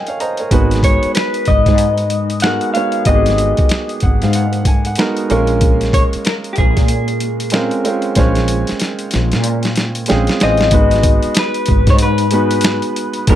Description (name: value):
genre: R&B, neo-soul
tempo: 94 BPM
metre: 4/4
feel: swing 61% on 16ths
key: G# dorian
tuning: A4 = 436 Hz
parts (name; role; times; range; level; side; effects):
- warm upright piano; accompaniment; 0.0-13.4 s; G#3 to C#6; -19 LUFS; right 3 dB; none
- boom bap sampler-style drum kit; drums; 0.1-13.4 s; finger snaps, hi-hat, kick drum, snare drum; -16 LUFS; equal; none
- woody fretless electric bass; bass; 0.5-13.4 s; G#1 to A#2; -16 LUFS; equal; ensemble chorus
- electric guitar through a small old amp; melody; 0.8-13.4 s; G4 to F#5; -18 LUFS; left 4 dB; spring reverb, slapback echo
room: little or no reverb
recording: none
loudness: -12 LUFS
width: side -12 dB against mid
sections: 0.0-10.7 A section; 10.7-13.4 B section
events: upright piano fill 0.0-0.5, 3.7-5.6, 9.8-10.7; drum fill 8.2-10.7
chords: 0.0 A#m9; 0.5 G#m9; 5.3 A#m9; 10.7 G#m7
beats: | 0.51 1.15 1.78 2.42 | 3.06 3.70 4.34 4.98 | 5.62 6.25 6.89 7.53 | 8.17 8.81 9.44 10.08 | 10.72 11.36 12.00 12.64 | 13.27